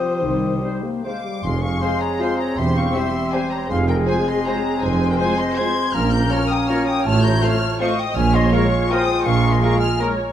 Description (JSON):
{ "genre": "classical, orchestral ballroom waltz", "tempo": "142-177 BPM", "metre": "3/4", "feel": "rubato", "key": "F minor", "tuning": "A4 = 440 Hz", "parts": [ { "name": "warm symphonic violin section", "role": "melody", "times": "0.0-10.0 s", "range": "C4 to Ab6", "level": "-27 LUFS", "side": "left 4 dB", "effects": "none" }, { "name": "silver concert flute", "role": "second line", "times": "0.0-10.0 s", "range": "Bb4 to Eb6", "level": "-27 LUFS", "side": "left 2 dB", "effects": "none" }, { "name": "warm clarinet", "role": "second line", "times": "0.0-10.3 s", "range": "C4 to C5", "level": "-26 LUFS", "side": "left 2 dB", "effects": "none" }, { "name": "warm symphonic violin section", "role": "second line", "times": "0.0-10.1 s", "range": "Bb3 to C5", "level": "-31 LUFS", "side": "left 3 dB", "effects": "none" }, { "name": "clear bassoon", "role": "accompaniment", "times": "0.0-10.3 s", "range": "G3 to Bb3", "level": "-28 LUFS", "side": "left 1 dB", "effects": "none" }, { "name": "mellow French horn section", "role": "sustained chords", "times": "0.0-10.1 s", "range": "Eb3 to G4", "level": "-27 LUFS", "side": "left 4 dB", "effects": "none" }, { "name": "dark symphonic cello section", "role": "bass", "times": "0.2-9.6 s", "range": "E2 to C3", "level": "-27 LUFS", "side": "right 3 dB", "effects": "none" }, { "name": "mellow tuba", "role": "bass", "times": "0.2-9.6 s", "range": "E1 to C2", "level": "-27 LUFS", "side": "right 2 dB", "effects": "none" }, { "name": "rich symphonic double bass section", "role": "bass", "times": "0.2-9.6 s", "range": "E1 to C2", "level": "-23 LUFS", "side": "right 3 dB", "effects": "none" }, { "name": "warm symphonic viola section", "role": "accompaniment", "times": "0.6-10.3 s", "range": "Eb3 to E5", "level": "-27 LUFS", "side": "right 1 dB", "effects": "none" }, { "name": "dark trumpet section", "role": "stabs", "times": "0.6-10.1 s", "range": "Bb4 to Db5", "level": "-30 LUFS", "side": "right 1 dB", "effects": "none" } ], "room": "wet recital hall reverb, RT60 1.4 s", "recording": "dark, warm production", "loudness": "-17 LUFS", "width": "side -10 dB against mid", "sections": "0.0-1.4 A section; 1.4-10.3 B section", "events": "none", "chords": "0.0 Cm; 1.4 Fm; 2.6 C/E; 3.7 Fm; 5.9 Bbm; 7.1 F/A; 8.2 Bbm7", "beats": "| 0.23 0.63 1.05 | 1.44 1.81 2.20 | 2.57 2.94 3.33 | 3.70 4.07 4.46 | 4.82 5.19 5.58 | 5.95 6.31 6.70 | 7.06 7.43 7.81 | 8.16 8.52 8.90 | 9.25 9.62 9.99" }